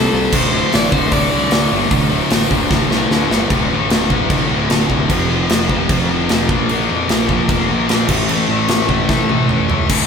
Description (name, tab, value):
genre	punk rock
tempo	150 BPM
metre	4/4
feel	straight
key	D minor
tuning	A4 = 435 Hz
part	overdriven semi-hollow guitar	melody	0.0-3.1 s	A4 to D5	-21 LUFS	equal	none
part	sludgy distorted guitar	riff	0.0-10.1 s	D2 to C4	-23 LUFS	right 10 dB	overdrive
part	thick fuzz guitar	riff	0.0-10.1 s	D2 to C4	-22 LUFS	equal	distortion
part	tight distorted guitar	riff	0.0-10.1 s	D2 to C4	-19 LUFS	left 7 dB	distortion
part	fuzz picked electric bass	bass	0.0-10.1 s	D1 to A2	-23 LUFS	equal	overdrive
part	big rock drum kit	drums	0.3-10.0 s	crash cymbal, hi-hat, kick drum, snare drum, toms	-17 LUFS	equal	none
room	light reverb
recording	band playing live in one room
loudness	-13 LUFS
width	side -6 dB against mid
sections	0.0-3.5 A section; 3.5-9.9 B section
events	drum fill 2.7-3.5, 9.1-9.9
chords	0.3 D5; 5.1 F5; 6.5 Bb5; 8.1 A5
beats	| 0.32 0.72 1.12 1.52 | 1.91 2.31 2.71 3.11 | 3.50 3.90 4.30 4.70 | 5.10 5.50 5.89 6.29 | 6.69 7.09 7.49 7.89 | 8.29 8.69 9.09 9.49 | 9.90